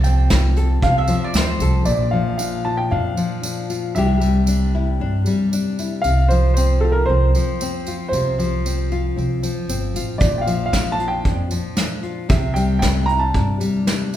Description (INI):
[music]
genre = acoustic folk duo or small band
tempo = 115 BPM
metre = 4/4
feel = straight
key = F major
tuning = A4 = 439 Hz
[part]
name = mandolin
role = second line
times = 0.0-1.8 s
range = C5 to G5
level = -24 LUFS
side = right 2 dB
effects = none
[part]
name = nylon-string guitar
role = accompaniment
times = 0.0-14.2 s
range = Bb2 to A4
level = -22 LUFS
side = left 4 dB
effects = none
[part]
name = upright bass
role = bass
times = 0.0-13.6 s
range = G1 to G2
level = -20 LUFS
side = right 1 dB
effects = none
[part]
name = soft brush drum kit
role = drums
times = 0.0-1.7, 10.2-14.2 s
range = hi-hat, kick drum, snare drum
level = -20 LUFS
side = equal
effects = none
[part]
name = tambourine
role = percussion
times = 0.0-14.2 s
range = none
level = -33 LUFS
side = right 3 dB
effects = none
[part]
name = warm upright piano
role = melody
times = 1.9-13.4 s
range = A4 to Bb5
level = -23 LUFS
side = right 1 dB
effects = none
[sound]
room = wet recital hall reverb, RT60 1.3 s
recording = recorded in a church or concert hall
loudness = -17 LUFS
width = side -12 dB against mid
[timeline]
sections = 0.0-1.9 A section; 1.9-14.2 B section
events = mandolin solo 0.0-1.9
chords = 0.0 F/C; 1.9 Bb; 4.0 Cadd9; 6.0 F5/C; 10.2 Bb; 12.3 Cadd9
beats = 0.31 0.83 1.35 | 1.87 2.39 2.91 3.43 | 3.96 4.48 5.00 5.52 | 6.04 6.56 7.08 7.61 | 8.13 8.65 9.17 9.69 | 10.21 10.73 11.26 11.78 | 12.30 12.82 13.34 13.86